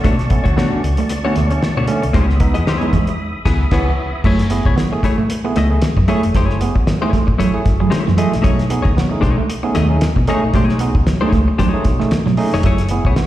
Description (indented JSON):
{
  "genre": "funk",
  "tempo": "114 BPM",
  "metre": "4/4",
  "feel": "swing 56% on 16ths",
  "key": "F# dorian",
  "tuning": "A4 = 440 Hz",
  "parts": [
    { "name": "semi-hollow electric guitar", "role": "accompaniment", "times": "0.0-13.2 s", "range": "A3 to D#5", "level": "-21 LUFS", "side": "left 4 dB", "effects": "slapback echo" },
    { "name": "tonewheel organ", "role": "sustained chords", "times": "0.0-4.2 s", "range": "D5 to D#6", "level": "-28 LUFS", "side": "equal", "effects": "slow rotary speaker, chorus vibrato" },
    { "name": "clean electric guitar", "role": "riff", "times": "0.0-13.3 s", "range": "E3 to B3", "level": "-21 LUFS", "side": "right 5 dB", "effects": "slapback echo" },
    { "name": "barky tine electric piano", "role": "stabs", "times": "0.0-13.3 s", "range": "B2 to G#4", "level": "-23 LUFS", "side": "right 2 dB", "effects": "slapback echo" },
    { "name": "hollow-body short-scale fingered electric bass", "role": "bass", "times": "0.0-13.1 s", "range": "E#1 to B2", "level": "-18 LUFS", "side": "equal", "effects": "none" },
    { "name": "cloth-damped thuddy drum kit", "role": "drums", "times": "0.0-13.3 s", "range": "crash cymbal, hi-hat, kick drum, snare drum", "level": "-18 LUFS", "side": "equal", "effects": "none" }
  ],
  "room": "light reverb, studio reverb",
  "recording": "live gig heard through the venue's PA, recital hall reverb, faint mains hum",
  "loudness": "-13 LUFS",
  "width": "side -14 dB against mid",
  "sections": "0.0-4.2 A section; 4.2-13.3 B section",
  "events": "band accent 3.2-4.2",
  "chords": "0.0 Bm9; 2.1 C#m7; 4.2 F#m9; 8.4 B13; 12.6 F#m9"
}